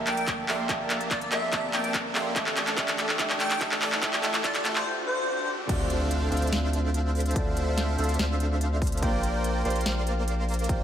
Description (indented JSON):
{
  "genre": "future bass",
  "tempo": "144 BPM",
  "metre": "4/4",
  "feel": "half-time",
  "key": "unclear",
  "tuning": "A4 = 436 Hz",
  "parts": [
    { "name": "warm concert grand piano", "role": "accompaniment", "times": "0.0-10.8 s", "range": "D3 to E6", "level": "-33 LUFS", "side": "right 2 dB", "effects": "sidechain pumping, tape echo" },
    { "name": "supersaw chords", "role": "riff", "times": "0.0-10.8 s", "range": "A3 to C6", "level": "-32 LUFS", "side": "equal", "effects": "cassette tape, sidechain pumping, tape echo" },
    { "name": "saturated sub bass", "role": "bass", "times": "0.0-10.8 s", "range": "A1 to D2", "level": "-30 LUFS", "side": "equal", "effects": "sidechain pumping" },
    { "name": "riser, swell and impact", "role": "sound effects", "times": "0.0-7.4 s", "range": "none", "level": "-37 LUFS", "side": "equal", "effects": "none" },
    { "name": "airy dreamy lead", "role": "melody", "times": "0.1-5.5 s", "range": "C5 to G5", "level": "-32 LUFS", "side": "equal", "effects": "chorus, sidechain pumping, tape echo" },
    { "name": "trap drum kit", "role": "drums", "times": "0.1-10.8 s", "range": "crash cymbal, handclaps, hi-hat, snare drum", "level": "-29 LUFS", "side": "equal", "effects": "overdrive" },
    { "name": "electronic kick drum", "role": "drums", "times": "0.3-10.8 s", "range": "none", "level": "-31 LUFS", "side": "equal", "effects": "none" }
  ],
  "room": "moderate lush hall reverb, RT60 1.9 s, digital ambience",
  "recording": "high-pass filter",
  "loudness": "-24 LUFS",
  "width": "side -10 dB against mid",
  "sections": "0.0-5.7 A section; 5.7-10.8 B section",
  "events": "build-up 0.0-5.7; drum fill 0.0-4.9; riser 0.0-5.7; filter sweep on supersaw synth 0.0-5.7; break 4.9-5.7; swell 4.9-5.7; drop 5.7-10.8; impact 5.7-7.4",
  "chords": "0.0 Gm69/Bb; 2.4 Am7; 5.7 Dm7; 9.0 Bb69"
}